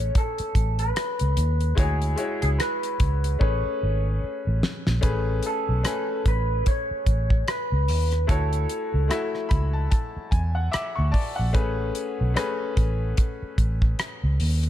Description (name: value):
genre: lush 1970s-style soul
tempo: 74 BPM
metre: 4/4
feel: swing 58% on 16ths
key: A major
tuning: A4 = 440 Hz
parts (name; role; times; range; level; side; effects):
- electric guitar through a small old amp; melody; 0.0-9.5 s; G#4 to C#5; -29 LUFS; equal; wide subtle chorus
- bright grand piano; accompaniment; 0.0-14.7 s; G#3 to D6; -31 LUFS; left 4 dB; none
- vintage muted fingered electric bass; bass; 0.0-14.7 s; G#1 to E2; -23 LUFS; equal; none
- damped 70s drum kit; drums; 0.2-14.7 s; hi-hat, kick drum, rim click, snare drum; -24 LUFS; equal; none
room: little or no reverb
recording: none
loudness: -22 LUFS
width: side -12 dB against mid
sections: 0.0-5.0 A section; 5.0-14.7 B section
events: drum fill 3.4-5.0; grand piano fill 9.1-11.5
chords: 0.0 Amaj9; 1.8 Dmaj9#11; 3.4 Amaj9; 8.3 Dmaj9; 11.5 Amaj9